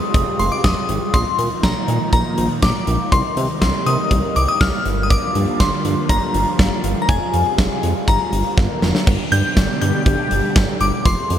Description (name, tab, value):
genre	synth-pop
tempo	121 BPM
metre	4/4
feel	straight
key	unclear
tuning	A4 = 443 Hz
part	glassy synth bell	melody	0.0-11.4 s	Ab5 to G6	-21 LUFS	left 2 dB	chorus, phaser, tape echo
part	lush unison pad	sustained chords	0.0-11.4 s	Bb2 to Ab4	-24 LUFS	right 1 dB	chorus, phaser
part	chorused synth bass	bass	0.1-11.4 s	F1 to C3	-20 LUFS	equal	none
part	huge arena drum kit	drums	0.1-11.4 s	crash cymbal, hi-hat, kick drum, snare drum	-19 LUFS	equal	gated reverb
room	light reverb, studio reverb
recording	none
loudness	-15 LUFS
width	side -10 dB against mid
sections	0.0-9.1 A section; 9.1-11.4 B section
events	drum fill 8.6-9.1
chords	0.0 Fmadd9; 1.1 Bbsus4; 3.1 Cm7; 4.9 Gm7; 7.1 Fmadd9; 8.1 Gm7; 9.1 G